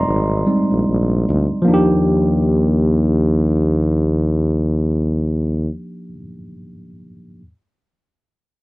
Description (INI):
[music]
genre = R&B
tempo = 74 BPM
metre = 4/4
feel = swing 54% on 16ths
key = Eb major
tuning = A4 = 441 Hz
[part]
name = tine electric piano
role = accompaniment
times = 0.0-7.4 s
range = F3 to C6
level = -19 LUFS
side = equal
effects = none
[part]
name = mellow tuba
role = bass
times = 0.0-5.7 s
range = Ab1 to Eb2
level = -17 LUFS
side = equal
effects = none
[sound]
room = little or no reverb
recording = dry, close 1970s-style studio recording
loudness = -15 LUFS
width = side -20 dB against mid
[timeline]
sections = 0.0-1.7 A section; 1.7-4.9 B section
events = tine electric piano solo 0.0-1.7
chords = 0.0 Bb13sus4; 1.7 Ebmaj9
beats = 0.05 0.86 | 1.67 2.48 3.29 4.10